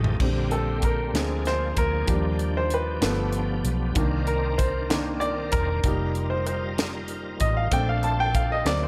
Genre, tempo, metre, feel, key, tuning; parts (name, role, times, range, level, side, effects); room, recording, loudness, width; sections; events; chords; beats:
slow gospel; 64 BPM (dotted quarters); 6/8; straight; Bb major; A4 = 440 Hz
clear baby grand piano; accompaniment; 0.0-8.9 s; D3 to A5; -29 LUFS; equal
bright tonewheel organ; sustained chords; 0.0-8.9 s; D3 to C5; -36 LUFS; equal; fast rotary speaker, overdrive, chorus vibrato
vintage muted fingered electric bass; bass; 0.0-8.9 s; E1 to Eb2; -30 LUFS; equal
crisp fusion drum kit; drums; 0.0-8.8 s; crash cymbal, hi-hat, kick drum, snare drum, toms; -29 LUFS; equal
light reverb, small room reverb; -25 LUFS; mono
0.2-8.9 A section
drum fill 0.0; grand piano solo 0.2-8.9
0.2 Bb69; 1.1 Bb7/D; 2.1 Ebmaj9; 3.0 G7; 4.0 Cm9; 5.8 F9sus4; 7.7 Bbmaj9
| 0.20 1.14 | 2.08 3.02 | 3.96 4.90 | 5.84 6.78 | 7.72 8.66